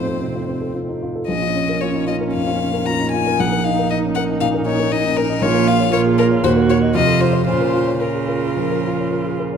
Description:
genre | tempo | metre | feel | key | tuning
quick classical-period movement for piano quartet | 116 BPM | 4/4 | uneven beats, rubato | Bb minor | A4 = 440 Hz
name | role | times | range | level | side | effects
rich violin | melody | 0.0-9.4 s | Bb4 to Bb5 | -22 LUFS | left 8 dB | none
rich cello | second line | 0.0-9.4 s | A2 to Db3 | -22 LUFS | right 6 dB | none
dark baby grand piano | accompaniment | 0.0-9.6 s | Bb1 to Eb5 | -20 LUFS | left 1 dB | none
dark viola | accompaniment | 0.0-9.4 s | C4 to Gb4 | -24 LUFS | right 4 dB | none
room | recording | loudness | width
moderate recital hall reverb, RT60 1.6 s | none | -16 LUFS | side -7 dB against mid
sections
0.0-9.6 A section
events
none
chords
0.0 F; 1.3 Bbm; 3.4 Eb5/Bb; 5.4 Bbm; 6.4 Ebm; 6.9 F7; 7.5 Bbm

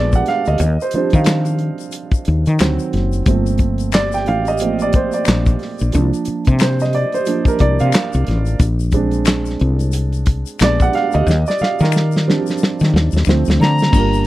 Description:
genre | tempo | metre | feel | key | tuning
R&B, neo-soul | 90 BPM | 4/4 | swing 60% on 16ths | G minor | A4 = 441 Hz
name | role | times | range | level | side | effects
dark upright piano | accompaniment | 0.0-14.3 s | Eb3 to G5 | -19 LUFS | right 3 dB | none
woody fretless electric bass | bass | 0.0-14.3 s | F#1 to Eb3 | -16 LUFS | left 1 dB | none
warm soul drum kit | drums | 0.1-14.3 s | crash cymbal, handclaps, hi-hat, kick drum, snare drum | -16 LUFS | left 1 dB | none
tube shaker and finger snaps | percussion | 0.1-14.3 s | none | -30 LUFS | left 20 dB | none
breathy bright jazz flute | melody | 13.6-14.3 s | Bb5 | -18 LUFS | left 3 dB | none
room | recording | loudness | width
little or no reverb | dry, close 1970s-style studio recording | -14 LUFS | side -16 dB against mid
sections
0.0-13.9 A section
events
upright piano solo 0.0-13.9; drum fill 11.3-13.9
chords
0.0 Bb7b9; 0.6 Ebmaj13; 2.6 D7b9; 3.3 Gm11; 5.9 C9sus4; 8.6 Bb9; 10.6 Bb7b9; 11.3 Ebmaj13; 13.3 Dm7

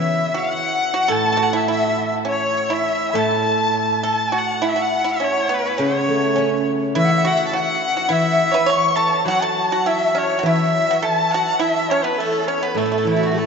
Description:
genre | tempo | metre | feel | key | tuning
chinese traditional, Chinese chamber ensemble | 103 BPM | 2/4 | rubato | A gong mode | A4 = 440 Hz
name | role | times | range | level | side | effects
clear erhu | melody | 0.0-13.5 s | E4 to C#6 | -22 LUFS | left 1 dB | none
bright large dizi | second line | 0.0-13.5 s | E4 to C#6 | -22 LUFS | left 2 dB | none
pipa | second line | 0.0-13.4 s | A3 to C#5 | -24 LUFS | right 4 dB | none
steel-string zither | accompaniment | 0.0-13.5 s | A2 to C#4 | -23 LUFS | right 1 dB | none
room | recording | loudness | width
wet cathedral reverb, RT60 4.9 s | in a vast, echoing space, nothing above 7.7 kHz | -16 LUFS | side -5 dB against mid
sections
0.0-4.6 A section; 4.6-13.5 B section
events
none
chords
none

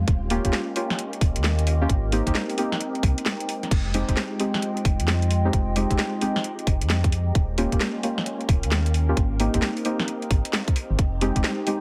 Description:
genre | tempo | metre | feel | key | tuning
UK garage, two-step garage | 132 BPM | 4/4 | swing 64% on 16ths | F minor | A4 = 440 Hz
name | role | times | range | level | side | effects
soft string machine | sustained chords | 0.0-11.8 s | Ab3 to G4 | -39 LUFS | equal | phaser, ensemble chorus, sidechain pumping
organ-like FM bass | bass | 0.0-11.4 s | Eb1 to F2 | -26 LUFS | equal | sidechain pumping
warbly tape-like pad | texture | 0.0-11.8 s | Ab3 to G5 | -36 LUFS | equal | chorus, built-in reverb, sidechain pumping
electronic kick drum | drums | 0.1-11.4 s | none | -24 LUFS | equal | none
garage drum kit | drums | 0.1-11.8 s | crash cymbal, hi-hat, snare drum | -30 LUFS | equal | none
deep mellow chord stab | stabs | 0.3-11.8 s | Ab3 to G4 | -29 LUFS | equal | chorus, digital delay
room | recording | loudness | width
light reverb | heavily compressed radio sound | -24 LUFS | mono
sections
0.0-11.8 A section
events
break 3.3-3.7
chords
0.1 Eb7; 1.9 Abmaj9; 3.7 Fm9; 7.3 Eb7; 9.2 Abmaj9; 11.0 Fm9

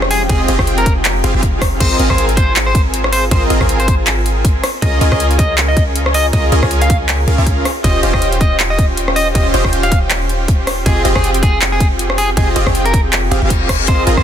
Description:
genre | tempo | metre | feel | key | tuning
future bass | 159 BPM | 4/4 | swing 56% on 16ths, half-time | Ab major | A4 = 440 Hz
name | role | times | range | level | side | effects
shimmering ambient pad | sustained chords | 0.0-1.8 s | F3 to G5 | -28 LUFS | left 2 dB | chorus, built-in reverb, sidechain pumping
supersaw stab | riff | 0.0-14.2 s | C4 to Ab5 | -18 LUFS | right 1 dB | sidechain pumping, tape echo
warm 808-style bass | bass | 0.0-14.2 s | Eb1 to Db2 | -17 LUFS | equal | sidechain pumping
big-room dance drum kit | drums | 0.0-14.2 s | crash cymbal, handclaps, hi-hat, ride cymbal, rim click | -19 LUFS | equal | none
clean electric guitar | melody | 0.1-14.2 s | Ab4 to F5 | -20 LUFS | left 1 dB | sidechain pumping, tape echo
electronic kick drum | drums | 0.3-14.2 s | none | -15 LUFS | equal | none
reverse cymbal | sound effects | 13.3-13.9 s | none | -22 LUFS | left 7 dB | none
room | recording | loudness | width
little or no reverb | dense, heavily limited modern master | -11 LUFS | side -9 dB against mid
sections
0.0-1.8 A section; 1.8-14.2 A section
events
drop 0.0-1.8, 1.8-14.2; band accent 1.6; reverse cymbal 13.3-13.9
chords
0.0 Fm9; 1.8 Ab69; 4.6 Db69; 7.7 Eb13; 10.9 Fm9

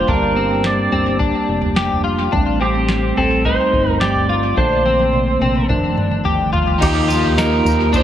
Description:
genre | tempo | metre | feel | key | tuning
dream pop | 107 BPM | 4/4 | straight | G minor | A4 = 440 Hz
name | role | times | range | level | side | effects
pedal steel guitar | melody | 0.0-8.0 s | G4 to D5 | -20 LUFS | right 2 dB | tape echo
percussive tonewheel organ | sustained chords | 0.0-8.0 s | D3 to G4 | -21 LUFS | right 2 dB | fast rotary speaker
clean electric guitar | arpeggios | 0.0-8.0 s | C4 to G4 | -20 LUFS | left 4 dB | analog chorus, tape echo
chorused synth bass | bass | 0.0-8.0 s | F1 to Eb2 | -21 LUFS | equal | none
soft vintage rhythm box | drums | 0.1-8.0 s | crash cymbal, kick drum, snare drum, tambourine, toms | -22 LUFS | equal | none
crunchy overdriven guitar | accompaniment | 6.8-8.0 s | Eb3 to G4 | -22 LUFS | right 4 dB | harmonic tremolo, lush chorus
room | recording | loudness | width
wet spring reverb, RT60 2.0 s, digital ambience | echo-heavy mix | -14 LUFS | side -10 dB against mid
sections
0.0-6.8 A section; 6.8-8.0 B section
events
drum fill 4.6-6.8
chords
0.0 Gm7; 2.3 Am7b5; 4.6 Bbmaj9; 5.7 F13; 6.8 Ebadd9

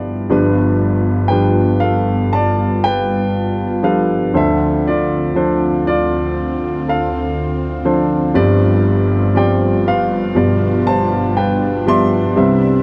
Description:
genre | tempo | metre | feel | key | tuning
acoustic folk-pop ballad | 60 BPM | 4/4 | straight | unclear | A4 = 444 Hz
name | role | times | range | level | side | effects
warm baby grand piano | melody | 0.0-12.8 s | G1 to C6 | -17 LUFS | equal | none
brassy analog pad | sustained chords | 0.0-12.8 s | D2 to E5 | -22 LUFS | equal | chorus
room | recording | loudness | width
little or no reverb | dry, close 1970s-style studio recording | -16 LUFS | mono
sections
0.3-12.8 A section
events
grand piano fill 0.0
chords
0.3 G7; 4.3 Dm7; 8.3 G7sus4; 10.4 G7

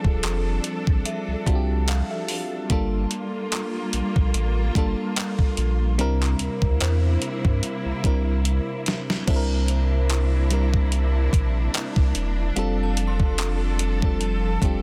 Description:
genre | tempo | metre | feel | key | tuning
contemporary R&B | 73 BPM | 4/4 | swing 54% on 16ths | unclear | A4 = 443 Hz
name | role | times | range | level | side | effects
FM electric piano | accompaniment | 0.0-14.8 s | G3 to A5 | -31 LUFS | equal | none
warm symphonic string section | sustained chords | 0.0-14.8 s | C3 to A4 | -34 LUFS | equal | sidechain pumping
warm sub bass | bass | 0.0-14.8 s | D1 to G2 | -25 LUFS | equal | none
clean 12-bit digital drum machine | drums | 0.0-14.8 s | crash cymbal, handclaps, hi-hat, kick drum, snare drum | -26 LUFS | equal | none
synth chime | texture | 0.0-14.8 s | C5 to C6 | -42 LUFS | equal | ensemble chorus, tape echo
room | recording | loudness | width
digital ambience | dense, heavily limited modern master | -23 LUFS | mono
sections
0.0-9.3 A section; 9.3-14.8 B section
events
FM electric piano fill 1.1-2.7; drum fill 8.5-9.3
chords
0.0 F6; 2.7 Gm7; 6.0 C7; 9.3 C9; 12.6 F6

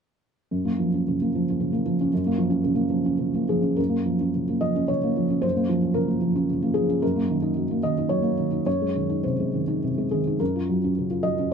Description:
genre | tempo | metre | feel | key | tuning
neoclassical minimalist piano | 101-117 BPM | 3/4 | rubato | Gb lydian | A4 = 440 Hz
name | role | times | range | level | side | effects
felt-muted upright piano | solo | 0.5-11.5 s | Gb2 to Eb5 | -21 LUFS | right 1 dB | none
room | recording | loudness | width
light reverb | dark, warm production | -22 LUFS | side -6 dB against mid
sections
0.5-3.8 A section; 3.8-11.5 B section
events
none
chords
0.5 Gbmaj7; 7.0 Ebm/Gb; 8.7 Ab/Gb; 10.4 Gbmaj7

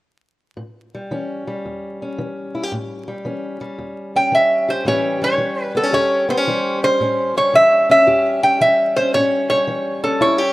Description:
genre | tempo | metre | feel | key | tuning
acoustic country blues, solo or duo | 112 BPM | 4/4 | swing 67% on 8ths | A mixolydian | A4 = 441 Hz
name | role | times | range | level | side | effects
fingerpicked steel-string acoustic guitar | accompaniment | 0.6-10.5 s | E2 to G4 | -22 LUFS | left 1 dB | none
lap resonator guitar | melody | 4.2-10.5 s | A4 to G5 | -15 LUFS | equal | none
room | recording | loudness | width
moderate lush hall reverb, RT60 2.7 s | rough home demo mix, vinyl crackle | -15 LUFS | side -18 dB against mid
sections
0.6-4.9 A section; 4.9-10.5 B section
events
none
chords
0.6 A7

